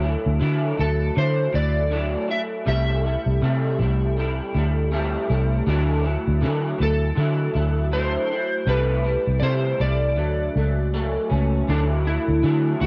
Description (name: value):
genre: indie pop, bedroom pop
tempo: 80 BPM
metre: 4/4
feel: swing 60% on 16ths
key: D mixolydian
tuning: A4 = 442 Hz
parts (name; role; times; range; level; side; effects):
- electric guitar through a small old amp; accompaniment; 0.0-12.9 s; C3 to E4; -28 LUFS; equal; analog chorus, warbly pitch drift
- vintage muted fingered electric bass; bass; 0.0-12.9 s; C2 to D3; -24 LUFS; equal; none
- electric slide guitar; melody; 0.8-12.9 s; D4 to E5; -28 LUFS; equal; analog chorus, cassette tape, tape echo
room: little or no reverb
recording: home recording on cassette, nothing above 7.6 kHz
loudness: -22 LUFS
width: mono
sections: 0.0-11.7 A section; 11.7-12.9 B section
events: electric slide guitar solo 11.7-12.9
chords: 0.0 Dadd9; 2.7 C6; 5.7 Dadd9; 8.7 C6; 10.2 Dmaj7; 11.7 Dadd9